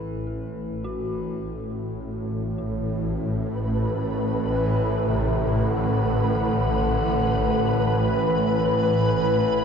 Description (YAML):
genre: dark ambient drone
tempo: free time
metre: none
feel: none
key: unclear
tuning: A4 = 439 Hz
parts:
  - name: clear bass clarinet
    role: melody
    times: 0.0-9.6 s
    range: C3 to E3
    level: -27 LUFS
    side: left 1 dB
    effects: ping-pong delay
  - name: dark detuned synth bell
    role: arpeggios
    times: 0.0-9.6 s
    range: E4 to A4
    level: -38 LUFS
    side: left 2 dB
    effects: chorus, phaser, ping-pong delay
  - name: swarming drone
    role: drone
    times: 0.0-9.6 s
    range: A1 to A2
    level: -24 LUFS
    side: equal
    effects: built-in reverb
  - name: flickering grainy texture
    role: texture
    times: 3.6-9.6 s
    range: B4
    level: -28 LUFS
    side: left 1 dB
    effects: built-in reverb
room: wet huge ambient reverb, RT60 8.5 s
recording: in a vast, echoing space, cassette tape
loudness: -21 LUFS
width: side -6 dB against mid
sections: 0.0-9.6 A section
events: fade-in on synth drone 0.0-9.6; fade-in on synth bell 0.0-9.6; fade-in on bass clarinet 0.0-9.6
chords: 0.0 A5